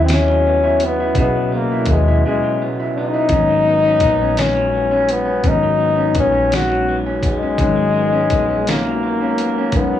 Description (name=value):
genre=slow six-eight R&B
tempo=56 BPM (dotted quarters)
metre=6/8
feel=straight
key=G# minor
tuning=A4 = 440 Hz
part: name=warm flugelhorn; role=melody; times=0.0-10.0 s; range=G#3 to F#4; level=-17 LUFS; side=left 3 dB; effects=cassette tape
part: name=electric guitar through a small old amp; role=second line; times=0.0-10.0 s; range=G#2 to E4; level=-22 LUFS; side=right 3 dB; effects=cassette tape
part: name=mellow tine electric piano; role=accompaniment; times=0.0-10.0 s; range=B2 to D#5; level=-24 LUFS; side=left 2 dB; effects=medium stereo tremolo, cassette tape
part: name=vintage muted fingered electric bass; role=bass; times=0.0-10.0 s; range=G#1 to D#2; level=-21 LUFS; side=equal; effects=none
part: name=dusty soul sampler-style drum kit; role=drums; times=0.1-9.9 s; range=hi-hat, kick drum, snare drum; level=-20 LUFS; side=left 1 dB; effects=cassette tape
room=little or no reverb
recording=home recording on cassette, small room ambience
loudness=-14 LUFS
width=side -11 dB against mid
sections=0.0-10.0 A section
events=break 2.2-3.3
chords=0.0 C#m11; 3.3 G#m11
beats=0.09 | 1.16 2.23 | 3.30 4.37 | 5.44 6.51 | 7.59 8.66 | 9.73